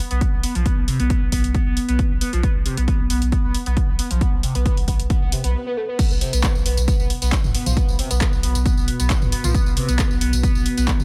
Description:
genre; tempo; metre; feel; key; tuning
driving peak-time techno; 135 BPM; 4/4; straight; unclear; A4 = 439 Hz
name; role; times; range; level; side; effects
overdriven synth lead; riff; 0.1-10.9 s; C3 to B3; -29 LUFS; equal; distortion, phaser, tube saturation, subtle chorus, sidechain pumping, tape echo
saturated sub bass; bass; 0.1-11.0 s; B1; -24 LUFS; equal; overdrive, sidechain pumping, low-pass filter
punchy analog drum machine; drums; 0.1-11.0 s; crash cymbal, handclaps, hi-hat, tambourine, toms; -29 LUFS; equal; sidechain pumping on hats, sidechain pumping on perc, sidechain pumping on cymbals, sidechain pumping on toms
electronic kick drum; drums; 0.2-11.0 s; none; -22 LUFS; equal; overdrive
swell; sound effects; 5.2-6.0 s; none; -39 LUFS; equal; none
deep dark ambient pad; drone; 6.8-11.0 s; B2 to B3; -34 LUFS; equal; chorus, built-in reverb, sidechain pumping
room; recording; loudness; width
little or no reverb; none; -20 LUFS; mono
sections
0.0-6.0 A section; 6.0-11.0 B section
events
swell 5.2-6.0; break 5.5-6.0; drop 6.0-11.0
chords
0.0 N.C.; 6.0 B5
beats
0.21 | 0.66 1.10 1.54 1.99 | 2.43 2.88 3.32 3.77 | 4.21 4.66 5.10 5.54 | 5.99 6.43 6.88 7.32 | 7.77 8.21 8.66 9.10 | 9.54 9.99 10.43 10.88

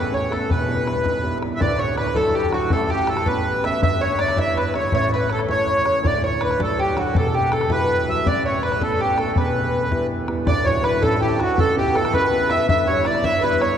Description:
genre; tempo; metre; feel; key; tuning
celtic folk, Celtic jig; 108 BPM (dotted quarters); 6/8; straight; E dorian; A4 = 440 Hz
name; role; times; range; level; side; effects
accordion; melody; 0.0-13.8 s; F#4 to E5; -21 LUFS; right 1 dB; none
mellow baroque flute; second line; 0.0-13.8 s; F#4 to E5; -27 LUFS; left 6 dB; none
open-back banjo; second line; 0.0-13.8 s; F#4 to E5; -28 LUFS; right 2 dB; none
dark upright piano; accompaniment; 0.0-13.8 s; D1 to E4; -24 LUFS; equal; none
bodhran; percussion; 0.1-13.7 s; none; -26 LUFS; left 1 dB; none
room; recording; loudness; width
wet cathedral reverb, RT60 4.9 s; recorded in a church or concert hall; -18 LUFS; side -8 dB against mid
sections
0.0-1.6 A section; 1.6-10.5 B section; 10.5-13.8 B section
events
none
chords
0.0 Aadd9; 0.5 Em; 1.6 Dadd9; 2.7 Aadd9; 3.8 Em/G; 4.9 A; 6.0 D; 7.1 Emadd9; 8.3 Aadd9; 9.4 Em; 10.5 Dadd9; 11.6 A9/C#; 12.7 Em/G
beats
| 0.50 1.05 | 1.61 2.16 | 2.72 3.27 | 3.83 4.38 | 4.93 5.49 | 6.04 6.59 | 7.15 7.70 | 8.26 8.81 | 9.36 9.92 | 10.47 11.03 | 11.58 12.13 | 12.68 13.24

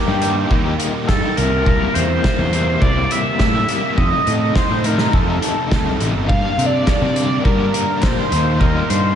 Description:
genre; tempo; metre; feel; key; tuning
indie rock; 104 BPM; 4/4; straight; unclear; A4 = 438 Hz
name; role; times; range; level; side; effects
overdriven synth lead; melody; 0.0-9.2 s; G4 to F5; -20 LUFS; equal; distortion, phaser, tape echo
biting overdriven guitar; riff; 0.0-9.2 s; F2 to E4; -24 LUFS; right 7 dB; ensemble chorus
overdriven electric guitar; riff; 0.0-9.2 s; F2 to G4; -24 LUFS; left 7 dB; tremolo
fuzz picked electric bass; bass; 0.1-9.1 s; G1 to C3; -20 LUFS; equal; overdrive
loose indie drum kit; drums; 0.2-9.0 s; hi-hat, kick drum, snare drum; -20 LUFS; equal; none
group handclap; percussion; 6.9-8.2 s; none; -37 LUFS; left 5 dB; none
room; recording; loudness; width
moderate lush hall reverb, RT60 2.3 s; dreamy mix soaked in reverb, nothing above 11.0 kHz; -14 LUFS; side -9 dB against mid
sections
0.0-9.2 A section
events
none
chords
0.0 Eb; 1.4 C7; 4.0 F7; 6.3 Gm; 8.3 Eb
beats
0.51 1.09 | 1.67 2.24 2.82 3.40 | 3.98 4.56 5.13 5.71 | 6.29 6.87 7.45 8.03 | 8.61

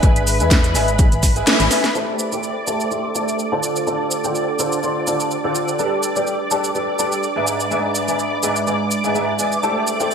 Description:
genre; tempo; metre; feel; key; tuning
piano house; 125 BPM; 4/4; swing 54% on 16ths; A minor; A4 = 440 Hz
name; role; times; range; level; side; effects
analog string pad; sustained chords; 0.0-10.1 s; B4 to D6; -25 LUFS; right 1 dB; ensemble chorus, sidechain pumping
warm baby grand piano; riff; 0.0-10.1 s; G#2 to C6; -21 LUFS; equal; ensemble chorus, sidechain pumping, low-pass filter
organ-like FM bass; bass; 0.0-1.7 s; G#1 to E2; -21 LUFS; equal; sidechain pumping
damped 70s drum kit; drums; 0.0-1.8 s; hi-hat, snare drum; -31 LUFS; right 3 dB; none
electronic kick drum; drums; 0.0-1.3 s; none; -15 LUFS; equal; none
garage drum kit; drums; 0.0-10.1 s; hi-hat, shaker, snare drum; -21 LUFS; right 1 dB; gated reverb
deep dark ambient pad; texture; 0.0-10.1 s; G#3 to C6; -26 LUFS; right 2 dB; chorus, built-in reverb, sidechain pumping
room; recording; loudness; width
moderate plate reverb, RT60 1.6 s, small room ambience; bright 1980s-style digital production; -16 LUFS; side -6 dB against mid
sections
0.0-1.9 A section; 1.9-10.1 B section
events
kick drops out 1.5-1.9; band accent 1.5; drum fill 1.7; filter sweep on grand piano 1.9-10.1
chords
0.0 E/G#; 1.9 Am7; 3.6 Dm7; 5.8 Gadd9; 7.5 E/G#; 9.6 Am7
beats
| 0.03 0.51 0.99 1.47 | 1.95 2.43 2.91 3.39 | 3.87 4.35 4.83 5.31 | 5.79 6.27 6.75 7.23 | 7.71 8.19 8.67 9.15 | 9.63 10.11

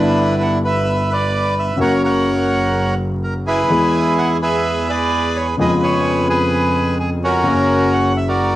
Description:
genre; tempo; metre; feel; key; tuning
tango; 128 BPM; 4/4; rubato; unclear; A4 = 440 Hz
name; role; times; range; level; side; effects
bandoneon; melody; 0.0-8.6 s; C#4 to F#5; -17 LUFS; right 1 dB; cassette tape
warm concert grand piano; accompaniment; 0.0-8.6 s; G1 to G#4; -19 LUFS; left 2 dB; cassette tape
warm double bass; bass; 0.0-8.6 s; F#1 to E#2; -23 LUFS; right 1 dB; none
room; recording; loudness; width
wet studio reverb, RT60 0.6 s; home recording on cassette; -14 LUFS; side -15 dB against mid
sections
0.0-8.6 A section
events
none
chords
0.0 Em7/G; 1.8 F#; 3.7 E; 5.6 C#7/E#; 7.5 F#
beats
0.38 0.85 1.32 | 1.79 2.26 2.73 3.21 | 3.69 4.17 4.64 5.12 | 5.59 6.06 6.53 6.99 | 7.46 7.93 8.39

